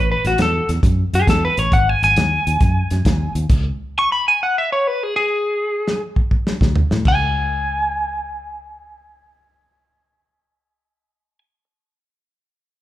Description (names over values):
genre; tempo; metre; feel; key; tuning
electric blues shuffle; 135 BPM; 4/4; swing 68% on 8ths; C# minor; A4 = 439 Hz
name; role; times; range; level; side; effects
lightly driven lead guitar; melody; 0.0-11.4 s; F#4 to C#6; -18 LUFS; left 1 dB; none
fingered electric bass; bass; 0.0-3.7, 6.6-11.6 s; G#1 to A2; -20 LUFS; equal; none
warm soul drum kit; drums; 0.2-7.2 s; crash cymbal, hi-hat, kick drum, snare drum, toms; -19 LUFS; equal; none
room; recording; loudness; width
moderate large studio reverb, RT60 1.2 s; band playing live in one room; -15 LUFS; side -14 dB against mid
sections
0.0-7.1 A section; 7.1-10.6 B section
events
stop 3.5-6.6; drum fill 5.3-7.1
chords
0.0 A5; 1.7 G#5; 3.5 C#5; 6.6 D5; 7.1 C#5